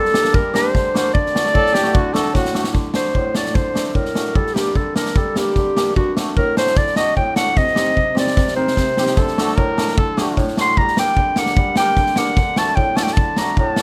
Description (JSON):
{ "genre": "klezmer", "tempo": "150 BPM", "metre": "4/4", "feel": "straight", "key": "D phrygian dominant", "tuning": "A4 = 440 Hz", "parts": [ { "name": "mellow clarinet", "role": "melody", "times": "0.0-13.8 s", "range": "F#4 to C6", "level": "-21 LUFS", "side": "equal", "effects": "plate reverb" }, { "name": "hammered dulcimer", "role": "accompaniment", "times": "0.0-13.8 s", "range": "A2 to Bb4", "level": "-25 LUFS", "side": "equal", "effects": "none" }, { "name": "street-band drum kit", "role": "drums", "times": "0.1-13.8 s", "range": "kick drum, snare drum", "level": "-22 LUFS", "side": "equal", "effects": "none" }, { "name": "warm trumpet", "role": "second line", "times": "1.6-2.7, 9.0-10.4 s", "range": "F#4 to Bb4", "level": "-24 LUFS", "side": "equal", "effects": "none" } ], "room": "light reverb", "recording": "close, detailed microphones", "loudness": "-18 LUFS", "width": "mono", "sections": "0.0-2.8 A section; 2.8-13.8 B section", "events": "drum fill 2.4-2.8, 8.4-9.2; clarinet solo 2.8-13.8", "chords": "0.0 Gm; 1.1 D; 4.4 Gm; 6.0 D; 7.6 Cm; 9.2 D; 10.8 Gm; 12.4 D" }